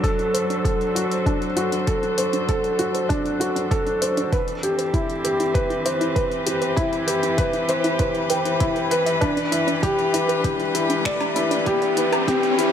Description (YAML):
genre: piano and strings electronica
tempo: 98 BPM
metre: 4/4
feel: straight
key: unclear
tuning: A4 = 440 Hz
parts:
  - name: dark string quartet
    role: sustained chords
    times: 0.0-12.7 s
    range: E3 to C5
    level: -26 LUFS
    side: left 2 dB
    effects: sidechain pumping, low-pass filter
  - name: soft round pluck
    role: arpeggios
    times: 0.0-12.7 s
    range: D4 to E5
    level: -29 LUFS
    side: right 3 dB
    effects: none
  - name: felt-muted upright piano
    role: riff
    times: 0.0-12.7 s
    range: D4 to G5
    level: -22 LUFS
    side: left 1 dB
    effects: digital delay
  - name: deep house drum kit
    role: drums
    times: 0.0-12.7 s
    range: finger snaps, hi-hat, woodblock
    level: -30 LUFS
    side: left 2 dB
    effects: overdrive, high-pass filter on hats, high-pass filter on snare, high-pass filter on perc, high-pass filter on room
  - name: electronic kick drum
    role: drums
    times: 0.0-12.4 s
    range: none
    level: -24 LUFS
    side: equal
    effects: overdrive
  - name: riser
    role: sound effects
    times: 10.6-12.7 s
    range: none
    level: -28 LUFS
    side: equal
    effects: none
room: moderate concert hall reverb, RT60 2.0 s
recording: high-pass filter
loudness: -19 LUFS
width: side -8 dB against mid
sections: 0.0-12.7 A section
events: build-up 0.0-12.7; filter sweep on string quartet 0.0-12.7; riser 10.6-12.7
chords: 0.0 D7; 4.3 Cmaj7; 9.2 Em7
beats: 0.04 0.65 1.26 | 1.88 2.49 3.10 3.71 | 4.33 4.94 5.55 6.16 | 6.77 7.39 8.00 8.61 | 9.22 9.84 10.45 11.06 | 11.67 12.28